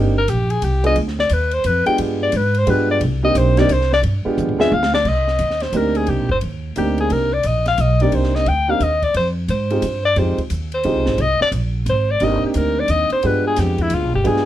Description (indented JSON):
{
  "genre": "jazz, small-group swing and bop",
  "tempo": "176 BPM",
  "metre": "3/4",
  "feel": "swing 64% on 8ths",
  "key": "C minor",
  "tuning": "A4 = 440 Hz",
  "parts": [
    { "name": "dark grand piano", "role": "accompaniment", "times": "0.0-14.5 s", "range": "Ab3 to Ab4", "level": "-21 LUFS", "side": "right 3 dB", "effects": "none" },
    { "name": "upright bass", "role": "bass", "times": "0.0-14.5 s", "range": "G1 to Ab2", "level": "-20 LUFS", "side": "equal", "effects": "none" },
    { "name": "breathy alto saxophone", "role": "melody", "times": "0.2-14.5 s", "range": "E4 to G5", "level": "-19 LUFS", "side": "left 2 dB", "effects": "none" },
    { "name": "compact cocktail drum kit", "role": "drums", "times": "0.3-14.5 s", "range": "crash cymbal, hi-hat, kick drum, ride cymbal, snare drum, toms", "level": "-30 LUFS", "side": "equal", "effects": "none" }
  ],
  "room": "light reverb",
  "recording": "none",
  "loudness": "-15 LUFS",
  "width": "side -12 dB against mid",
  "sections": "0.0-5.1 A section; 5.1-14.5 A section",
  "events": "alto saxophone solo 0.0-14.5; drum fill 4.4-5.1",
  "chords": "0.0 Cm7; 1.0 G7b9; 3.0 Cm7; 4.0 G7b9; 5.1 Cm7; 9.1 Fm7; 11.2 Cm7; 13.2 G7b9",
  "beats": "0.28 0.62 | 0.97 1.31 1.65 | 1.99 2.33 2.67 | 3.01 3.35 3.69 | 4.03 4.37 4.71 | 5.06 5.40 5.74 | 6.08 6.42 6.76 | 7.10 7.44 7.78 | 8.12 8.47 8.81 | 9.15 9.49 9.83 | 10.17 10.51 10.85 | 11.19 11.53 11.87 | 12.21 12.55 12.89 | 13.23 13.57 13.91 | 14.25"
}